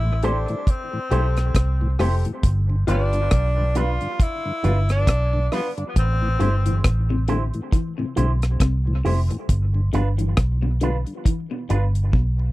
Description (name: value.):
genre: dub reggae.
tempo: 68 BPM.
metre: 4/4.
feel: swing 58% on 16ths.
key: A minor.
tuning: A4 = 438 Hz.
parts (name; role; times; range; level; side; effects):
clear tenor saxophone; melody; 0.0-6.8 s; B3 to F4; -28 LUFS; left 1 dB; dub echo.
mellow tonewheel organ; accompaniment; 0.0-12.5 s; G2 to C4; -31 LUFS; left 2 dB; slow rotary speaker, high-pass filter, dub echo.
vintage muted fingered electric bass; bass; 0.0-12.5 s; F1 to C2; -20 LUFS; equal; none.
electric guitar with an envelope filter; accompaniment; 0.2-11.8 s; D4 to C5; -30 LUFS; right 4 dB; high-pass filter, dub echo.
clear upright piano; stabs; 0.2-3.1 s; F4 to C5; -31 LUFS; left 5 dB; high-pass filter, dub echo.
deep reggae drum kit; drums; 0.2-12.4 s; hi-hat, kick drum, rim click; -21 LUFS; equal; none.
electric guitar through a small old amp; arpeggios; 6.4-12.3 s; B2 to E3; -30 LUFS; left 4 dB; dub echo.
room: little or no reverb.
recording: dry, close 1970s-style studio recording.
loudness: -19 LUFS.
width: side -18 dB against mid.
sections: 0.0-12.5 A section.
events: break 0.0-6.0; drum fill 12.1-12.5.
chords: 0.0 Am7; 2.4 G7; 6.0 Am7; 9.5 G7.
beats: 0.67 1.55 | 2.43 3.32 4.20 5.08 | 5.96 6.84 7.73 8.61 | 9.49 10.38 11.26 12.14.